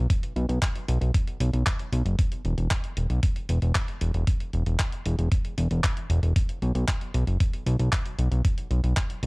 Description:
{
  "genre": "italo disco",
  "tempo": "115 BPM",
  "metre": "4/4",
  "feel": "straight",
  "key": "unclear",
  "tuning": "A4 = 440 Hz",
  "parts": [
    { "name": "fat analog bass", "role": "bass", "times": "0.0-9.3 s", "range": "E1 to B1", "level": "-24 LUFS", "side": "equal", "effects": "tube saturation" },
    { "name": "clean 12-bit digital drum machine", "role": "drums", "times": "0.1-9.3 s", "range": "handclaps, hi-hat", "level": "-32 LUFS", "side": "equal", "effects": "none" },
    { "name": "electronic kick drum", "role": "drums", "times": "0.1-9.1 s", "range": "none", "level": "-25 LUFS", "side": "equal", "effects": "overdrive" }
  ],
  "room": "digital ambience",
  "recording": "dry, gritty hardware recording, cassette tape",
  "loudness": "-23 LUFS",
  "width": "side -30 dB against mid",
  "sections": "0.0-9.3 A section",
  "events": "none",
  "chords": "none",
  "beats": "| 0.10 0.62 1.14 1.66 | 2.19 2.71 3.23 3.75 | 4.27 4.79 5.32 5.84 | 6.36 6.88 7.40 7.92 | 8.45 8.97"
}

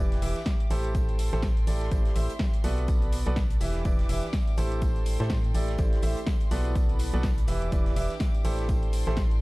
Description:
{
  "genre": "piano house",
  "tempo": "124 BPM",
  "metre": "4/4",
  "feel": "swing 58% on 16ths",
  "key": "E minor",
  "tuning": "A4 = 441 Hz",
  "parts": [
    { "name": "warm studio violin section", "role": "sustained chords", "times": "0.0-9.4 s", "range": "G4 to D6", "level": "-41 LUFS", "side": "equal", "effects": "sidechain pumping" },
    { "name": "bright grand piano", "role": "riff", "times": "0.0-9.2 s", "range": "E3 to E5", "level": "-33 LUFS", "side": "right 2 dB", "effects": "sidechain pumping, low-pass filter, tape echo" },
    { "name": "organ-like FM bass", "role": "bass", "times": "0.0-9.4 s", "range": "E1 to A2", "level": "-28 LUFS", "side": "equal", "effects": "sidechain pumping" },
    { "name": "deep dark ambient pad", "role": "texture", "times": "0.4-9.4 s", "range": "E4 to G5", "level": "-44 LUFS", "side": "right 2 dB", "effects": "chorus, built-in reverb, sidechain pumping" },
    { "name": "big rock drum kit", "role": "drums", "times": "0.1-9.3 s", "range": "hi-hat, snare drum, tambourine", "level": "-50 LUFS", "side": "left 1 dB", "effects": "sidechain pumping on hats, high-pass filter on hats, studio reverb, high-pass filter on snare, sidechain pumping on perc, high-pass filter on perc, high-pass filter on room" },
    { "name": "house drum kit", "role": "drums", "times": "0.1-9.4 s", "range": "hi-hat, snare drum", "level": "-37 LUFS", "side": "equal", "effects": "studio reverb" },
    { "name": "tambourine", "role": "percussion", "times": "0.1-9.4 s", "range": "none", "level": "-50 LUFS", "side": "left 1 dB", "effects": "none" },
    { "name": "electronic kick drum", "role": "drums", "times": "0.5-9.3 s", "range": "none", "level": "-26 LUFS", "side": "equal", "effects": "studio reverb" }
  ],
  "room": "small room ambience",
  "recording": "dark, warm production",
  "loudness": "-24 LUFS",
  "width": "side -21 dB against mid",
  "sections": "0.0-9.4 A section",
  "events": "fade-in on ambient pad 0.0-9.4",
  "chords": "0.0 Em7; 0.9 Am7; 1.9 D9sus4/A; 2.9 Bm7; 3.6 Em7; 4.8 Am7; 5.8 D9sus4/A; 6.8 Bm7; 7.5 Em7; 8.7 Am7",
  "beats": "0.47 | 0.95 1.43 1.92 2.40 | 2.88 3.37 3.85 4.34 | 4.82 5.30 5.79 6.27 | 6.75 7.24 7.72 8.21 | 8.69 9.17"
}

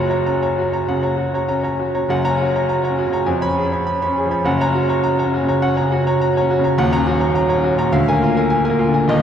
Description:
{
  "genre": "classical, virtuoso piano study",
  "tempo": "103 BPM",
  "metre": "4/4",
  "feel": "rubato",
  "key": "F# major",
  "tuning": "A4 = 436 Hz",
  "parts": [
    { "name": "bright grand piano", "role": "solo", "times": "0.0-9.2 s", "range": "D#1 to B5", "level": "-15 LUFS", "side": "equal", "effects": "none" }
  ],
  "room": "wet church reverb, RT60 3.3 s",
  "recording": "dark, warm production",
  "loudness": "-15 LUFS",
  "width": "side -8 dB against mid",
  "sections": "0.0-2.1 A section; 2.1-9.2 A section",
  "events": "none",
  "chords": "0.0 F#; 3.3 C#7/E#; 4.5 F#; 6.8 D#m7; 7.9 A#7/D",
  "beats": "0.27 0.89 1.50 | 2.10 2.69 3.27 3.87 | 4.45 5.03 5.61 6.20 | 6.78 7.36 7.93 8.51 | 9.08"
}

